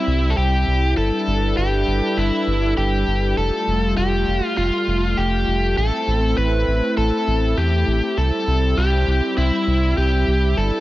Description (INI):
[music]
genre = synthwave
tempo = 100 BPM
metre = 4/4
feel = straight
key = C major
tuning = A4 = 439 Hz
[part]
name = biting lead guitar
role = melody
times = 0.0-10.8 s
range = E4 to B4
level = -21 LUFS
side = equal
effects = overdrive, tape echo
[part]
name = warm analog pad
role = sustained chords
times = 0.0-10.8 s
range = G3 to B4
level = -23 LUFS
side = equal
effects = chorus
[part]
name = round analog bass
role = bass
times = 0.1-10.7 s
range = F1 to E2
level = -20 LUFS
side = equal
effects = none
[sound]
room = light reverb, digital ambience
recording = none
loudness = -17 LUFS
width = side -16 dB against mid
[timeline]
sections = 0.0-10.8 A section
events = none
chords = 0.0 C; 1.0 G6; 3.4 Fadd9; 5.8 Am; 8.2 C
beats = 0.37 | 0.97 1.57 2.17 2.77 | 3.37 3.97 4.57 5.17 | 5.77 6.37 6.97 7.57 | 8.17 8.77 9.37 9.97 | 10.57